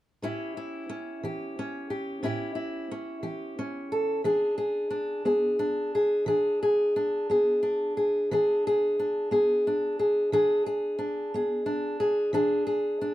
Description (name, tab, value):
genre	acoustic country blues, solo or duo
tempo	59 BPM (dotted quarters)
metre	12/8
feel	straight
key	A major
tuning	A4 = 441 Hz
part	fingerpicked old ladder-braced acoustic guitar	solo	0.2-13.1 s	A2 to A4	-25 LUFS	equal	none
room	moderate studio ambience, RT60 0.5 s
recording	dark, warm production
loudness	-25 LUFS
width	side -15 dB against mid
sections	0.2-13.1 A section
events	none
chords	0.2 A7; 4.3 E7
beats	| 0.22 1.23 2.23 3.24 | 4.25 5.26 6.27 7.28 | 8.29 9.31 10.32 11.34 | 12.35